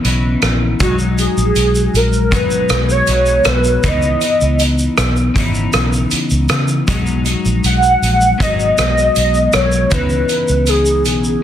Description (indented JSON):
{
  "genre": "indie pop, bedroom pop",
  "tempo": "79 BPM",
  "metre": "4/4",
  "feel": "straight",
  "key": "B major",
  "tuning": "A4 = 438 Hz",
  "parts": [
    { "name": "twelve-string electric guitar", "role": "accompaniment", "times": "0.0-11.4 s", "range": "B2 to D#4", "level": "-19 LUFS", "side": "left 3 dB", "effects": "analog chorus, vibrato effect" },
    { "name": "vintage muted fingered electric bass", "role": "bass", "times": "0.0-11.4 s", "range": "G#1 to C#3", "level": "-17 LUFS", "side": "equal", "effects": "none" },
    { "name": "loose indie drum kit", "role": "drums", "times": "0.0-11.4 s", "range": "hi-hat, kick drum, rim click, shaker", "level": "-18 LUFS", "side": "right 1 dB", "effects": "soft clipping on snare" },
    { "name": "warbly nostalgic lead", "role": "melody", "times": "0.8-11.4 s", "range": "F#4 to F#5", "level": "-15 LUFS", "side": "equal", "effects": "ensemble chorus" }
  ],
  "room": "light reverb",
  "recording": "dense, heavily limited modern master",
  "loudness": "-12 LUFS",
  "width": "side -10 dB against mid",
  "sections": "0.0-11.4 A section",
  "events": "none",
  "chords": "0.0 C#m9; 0.8 B6; 3.8 C#m9; 6.9 B6; 9.9 C#m9",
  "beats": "0.04 | 0.80 1.56 2.32 3.08 | 3.84 4.60 5.36 6.12 | 6.88 7.64 8.40 9.16 | 9.92 10.68"
}